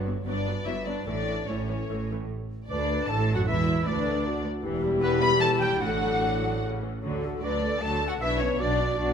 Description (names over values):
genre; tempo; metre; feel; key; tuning
quick classical-period movement for symphony orchestra; 144-158 BPM; 3/4; rubato; D major; A4 = 439 Hz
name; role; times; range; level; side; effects
warm French horn section; sustained chords; 0.0-9.1 s; E3 to B4; -31 LUFS; left 4 dB; none
muted studio cello section; bass; 0.0-9.1 s; D2 to D3; -33 LUFS; right 3 dB; none
muted studio double bass section; bass; 0.0-9.1 s; E1 to D2; -31 LUFS; right 3 dB; none
muted studio viola section; accompaniment; 0.1-9.1 s; C#3 to A4; -34 LUFS; left 2 dB; none
muted studio violin section; melody; 0.3-9.1 s; B4 to B5; -31 LUFS; left 4 dB; none
muted studio violin section; second line; 0.3-9.1 s; B3 to B4; -36 LUFS; left 3 dB; none
clear oboe; second line; 2.7-9.1 s; B4 to B5; -34 LUFS; right 2 dB; none
silver concert flute; second line; 2.7-9.1 s; B4 to B5; -34 LUFS; left 1 dB; none
room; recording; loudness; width
moderate scoring stage reverb, RT60 1.9 s; none; -24 LUFS; side -7 dB against mid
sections
0.0-2.3 A section; 2.3-9.1 B section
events
none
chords
0.0 Gmaj7; 1.1 A; 2.3 D; 3.5 Bm; 4.6 Em; 5.8 D/A; 6.6 A; 7.0 D; 8.2 Bm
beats
0.25 0.65 | 1.07 1.48 1.89 | 2.30 2.70 3.09 | 3.48 3.87 4.26 | 4.64 5.03 5.42 | 5.82 6.23 6.64 | 7.04 7.43 7.82 | 8.21 8.60 8.99